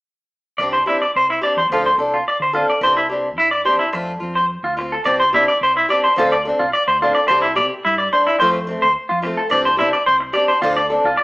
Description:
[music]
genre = highlife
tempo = 108 BPM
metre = 4/4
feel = straight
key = C major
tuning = A4 = 439 Hz
[part]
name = picked old ladder-braced acoustic guitar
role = accompaniment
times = 0.6-11.1 s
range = E3 to A4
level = -20 LUFS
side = left 1 dB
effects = none
[part]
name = clean electric guitar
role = arpeggios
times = 0.6-11.2 s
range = E4 to D5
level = -16 LUFS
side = equal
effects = warbly pitch drift
[part]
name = hollow-body short-scale fingered electric bass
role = bass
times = 0.6-11.2 s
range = C2 to D3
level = -33 LUFS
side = equal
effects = none
[sound]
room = moderate stone room reverb, RT60 1.1 s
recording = band playing live in one room, small speaker sound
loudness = -15 LUFS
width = side -23 dB against mid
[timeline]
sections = 0.6-5.1 A section; 5.1-11.2 B section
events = none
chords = 0.6 Cadd9; 1.7 Dm7; 2.8 Cadd9; 3.9 F; 5.1 Cadd9; 6.2 Dm7; 7.3 Cadd9; 8.4 F; 9.5 Cadd9; 10.6 Dm7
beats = | 0.59 1.15 1.71 2.27 | 2.83 3.38 3.94 4.50 | 5.06 5.62 6.17 6.73 | 7.29 7.84 8.40 8.96 | 9.51 10.07 10.62 11.18

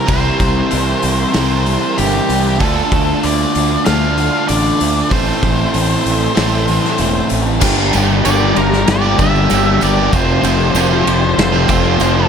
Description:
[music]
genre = rock, shoegaze and dream pop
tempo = 96 BPM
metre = 4/4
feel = straight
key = unclear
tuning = A4 = 441 Hz
[part]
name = octave-fuzz lead guitar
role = melody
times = 0.0-12.3 s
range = G4 to F5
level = -20 LUFS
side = left 1 dB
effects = distortion, slapback echo
[part]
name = string machine, cellos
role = sustained chords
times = 0.0-12.3 s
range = F4 to C6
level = -24 LUFS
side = equal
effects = ensemble chorus
[part]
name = overdriven electric guitar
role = riff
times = 0.0-12.3 s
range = F2 to Bb4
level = -18 LUFS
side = right 11 dB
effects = reverse reverb
[part]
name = thick fuzz guitar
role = riff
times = 0.0-12.3 s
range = F2 to D4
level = -19 LUFS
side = left 12 dB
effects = distortion, analog chorus
[part]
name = fuzz fingered electric bass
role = bass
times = 0.1-12.3 s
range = E1 to D2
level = -18 LUFS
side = equal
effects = overdrive
[part]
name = loose indie drum kit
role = drums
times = 0.1-12.1 s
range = crash cymbal, hi-hat, kick drum, ride cymbal, snare drum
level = -19 LUFS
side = equal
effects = none
[part]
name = tambourine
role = percussion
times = 7.6-12.1 s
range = none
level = -32 LUFS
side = right 4 dB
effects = none
[sound]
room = light reverb, small room ambience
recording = none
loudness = -12 LUFS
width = side -7 dB against mid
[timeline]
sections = 0.0-7.6 A section; 7.6-12.3 B section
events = none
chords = 0.0 C7; 2.6 Dm7; 5.1 Am7; 7.6 Gmadd9; 10.1 Fmaj7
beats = | 0.09 0.72 1.35 1.98 | 2.60 3.23 3.86 4.49 | 5.12 5.75 6.37 7.00 | 7.63 8.25 8.88 9.51 | 10.13 10.75 11.38 12.00

